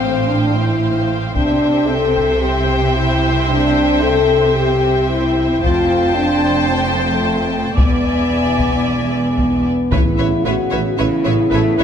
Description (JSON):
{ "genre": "cinematic, epic orchestral film score", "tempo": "112 BPM", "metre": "4/4", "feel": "straight", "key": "C major", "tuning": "A4 = 441 Hz", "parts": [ { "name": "rich symphonic violin section", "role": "melody", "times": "0.0-11.8 s", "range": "E5 to A5", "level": "-26 LUFS", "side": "left 2 dB", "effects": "none" }, { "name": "rich studio violin section", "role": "second line", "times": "0.0-11.8 s", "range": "C#5 to G5", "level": "-26 LUFS", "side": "left 1 dB", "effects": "none" }, { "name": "rich symphonic viola section", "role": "accompaniment", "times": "0.0-11.8 s", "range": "B4 to D5", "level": "-24 LUFS", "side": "right 1 dB", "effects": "none" }, { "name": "mellow French horn section", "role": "sustained chords", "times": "0.0-11.8 s", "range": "A3 to A4", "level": "-17 LUFS", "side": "left 2 dB", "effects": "none" }, { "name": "rich symphonic cello section", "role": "bass", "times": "0.0-11.8 s", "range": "E2 to A3", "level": "-21 LUFS", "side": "right 2 dB", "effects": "none" }, { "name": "rich symphonic double bass section", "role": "bass", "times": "0.0-11.8 s", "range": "E1 to C2", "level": "-23 LUFS", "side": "right 3 dB", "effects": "none" }, { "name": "taiko ensemble", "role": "drums", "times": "1.4-2.4, 5.6-10.4 s", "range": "none", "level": "-19 LUFS", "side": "left 1 dB", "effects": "none" }, { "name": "clear trombone section", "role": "sustained chords", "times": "9.9-11.8 s", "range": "C#3 to B3", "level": "-24 LUFS", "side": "right 6 dB", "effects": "none" }, { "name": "mellow tuba", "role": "bass", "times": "9.9-11.8 s", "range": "A1", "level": "-22 LUFS", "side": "right 5 dB", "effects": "none" }, { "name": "timpani", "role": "percussion", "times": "9.9-10.7 s", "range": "A2", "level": "-25 LUFS", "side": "equal", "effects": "none" } ], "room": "moderate scoring stage reverb, RT60 1.6 s", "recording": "none", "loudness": "-13 LUFS", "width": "side -8 dB against mid", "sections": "0.0-9.9 A section; 9.9-11.8 B section", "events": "none", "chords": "0.0 Fadd9/A; 1.4 Cadd9; 5.6 Fadd9; 7.8 E7; 9.9 Aadd9", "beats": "0.29 0.83 | 1.36 1.90 2.43 2.97 | 3.50 4.04 4.57 5.11 | 5.64 6.18 6.71 7.25 | 7.78 8.31 8.85 9.38 | 9.91 10.45 10.98 11.51" }